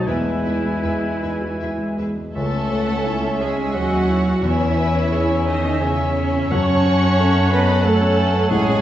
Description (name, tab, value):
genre	classical, romantic movement for piano and orchestra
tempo	78-92 BPM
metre	3/4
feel	rubato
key	C# minor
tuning	A4 = 440 Hz
part	warm concert grand piano	melody	0.0-8.8 s	C#2 to C#5	-22 LUFS	left 1 dB	none
part	bright oboe	second line	0.0-8.8 s	E5 to G#5	-30 LUFS	equal	none
part	dark clarinet	second line	0.0-8.8 s	B4 to C#5	-30 LUFS	left 1 dB	none
part	mellow hollow small flute group	second line	0.0-8.8 s	E5 to A5	-30 LUFS	left 2 dB	none
part	mellow bassoon	accompaniment	0.0-8.8 s	E3 to C#4	-29 LUFS	right 1 dB	none
part	rich chamber viola section	accompaniment	0.0-8.8 s	C#4 to C#5	-26 LUFS	right 2 dB	none
part	dark French horn section	sustained chords	0.0-8.8 s	C#3 to C#4	-28 LUFS	left 3 dB	none
part	rich symphonic cello section	bass	0.0-8.8 s	C#3 to C#4	-25 LUFS	right 2 dB	none
part	rich chamber violin section	melody	0.1-8.8 s	C#5 to C#6	-33 LUFS	left 2 dB	none
part	rich chamber violin section	second line	0.1-8.8 s	G#4 to A5	-31 LUFS	equal	none
part	rich chamber double bass section	bass	0.1-8.8 s	A1 to F#2	-25 LUFS	right 2 dB	none
room	wet recital hall reverb, RT60 1.6 s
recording	heard from further back in the room, nothing above 7.9 kHz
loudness	-17 LUFS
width	side -12 dB against mid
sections	0.0-2.4 A section; 2.4-8.8 B section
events	none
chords	0.1 E; 2.4 C#m; 4.4 C#m/E; 6.5 F#m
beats	| 0.07 0.84 1.60 | 2.35 3.06 3.74 | 4.43 5.12 5.80 | 6.51 7.19 7.84 | 8.51